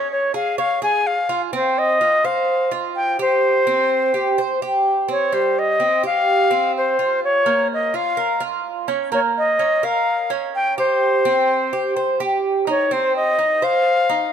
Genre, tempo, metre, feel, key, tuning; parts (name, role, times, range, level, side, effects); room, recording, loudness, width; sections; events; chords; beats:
latin; 126 BPM; 4/4; straight; F minor; A4 = 440 Hz
reedy silver concert flute; melody; 0.0-14.3 s; C5 to Ab5; -18 LUFS; left 2 dB
Cuban tres; arpeggios; 0.0-14.3 s; G3 to Db5; -21 LUFS; right 4 dB
moderate plate reverb, RT60 3.7 s; dark, warm production; -16 LUFS; side -8 dB against mid
0.0-5.3 A section; 5.3-14.3 A section
0.0 Db; 1.5 Fsus2; 3.4 C5; 5.3 Fsus2; 7.2 Bbm; 9.1 Gdim; 11.0 C5; 12.9 Ab (rootless)
0.09 0.57 1.05 | 1.52 2.00 2.47 2.95 | 3.42 3.90 4.38 4.85 | 5.33 5.80 6.28 6.75 | 7.22 7.70 8.17 8.65 | 9.12 9.60 10.07 10.54 | 11.02 11.49 11.96 12.44 | 12.91 13.38 13.86